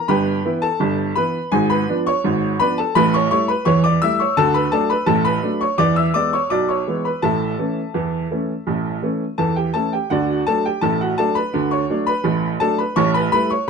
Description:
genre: ragtime piano.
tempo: 84 BPM.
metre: 2/4.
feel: straight.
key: D major.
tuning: A4 = 442 Hz.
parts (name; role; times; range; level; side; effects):
clear upright piano; solo; 0.0-13.7 s; G1 to E6; -16 LUFS; equal; none.
room: light reverb.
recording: dark, warm production.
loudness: -16 LUFS.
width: side -5 dB against mid.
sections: 0.0-10.1 A section; 10.1-13.7 B section.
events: none.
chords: 0.0 Em/G; 1.5 G#dim7; 2.9 A7; 4.4 D; 5.8 E7; 7.2 A; 10.1 D; 13.0 A7.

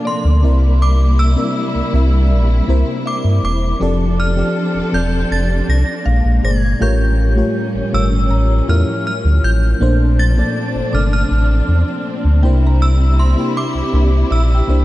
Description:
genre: R&B.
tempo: 80 BPM.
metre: 4/4.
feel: straight.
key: unclear.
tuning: A4 = 440 Hz.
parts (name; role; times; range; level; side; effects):
synth chime; melody; 0.0-14.8 s; C6 to Bb6; -24 LUFS; right 1 dB; ensemble chorus, tape echo.
FM electric piano with soft pad layer; accompaniment; 0.0-14.8 s; A2 to F5; -20 LUFS; left 1 dB; chorus.
dark studio string section; sustained chords; 0.0-14.8 s; C3 to A4; -23 LUFS; equal; none.
mallet-like synth pluck; texture; 0.0-14.8 s; D5 to D6; -33 LUFS; left 1 dB; chorus, tape echo.
sub bass with octave; bass; 0.2-14.8 s; E1 to G2; -13 LUFS; equal; none.
room: light reverb, digital ambience.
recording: vinyl crackle, nothing above 10.8 kHz.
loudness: -13 LUFS.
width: side -16 dB against mid.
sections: 0.0-14.8 A section.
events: none.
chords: 0.4 C7; 3.8 F6; 6.1 Bb9; 6.8 A7b9b13; 9.8 Bbmaj9; 12.4 C7.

